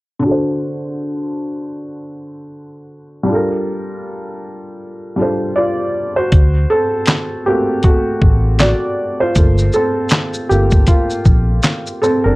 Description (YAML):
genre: lo-fi hip hop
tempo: 79 BPM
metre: 4/4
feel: swing 59% on 16ths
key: unclear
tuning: A4 = 437 Hz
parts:
  - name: felt-muted upright piano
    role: accompaniment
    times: 0.2-12.4 s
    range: D3 to D5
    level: -17 LUFS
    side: equal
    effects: cassette tape, low-pass filter
  - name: vintage muted fingered electric bass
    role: bass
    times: 6.3-12.4 s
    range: G1 to D2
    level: -14 LUFS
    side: equal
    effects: none
  - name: dusty soul sampler-style drum kit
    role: drums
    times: 6.3-12.2 s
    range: handclaps, hi-hat, kick drum, shaker, snare drum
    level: -12 LUFS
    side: equal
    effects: none
room: light reverb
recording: cassette tape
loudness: -13 LUFS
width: side -21 dB against mid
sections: 0.2-6.3 A section; 6.3-12.4 B section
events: filter sweep on felt piano 0.2-6.3; felt piano solo 6.3-12.4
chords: 0.2 D7; 3.3 Gm7; 6.3 D7; 9.4 Gm7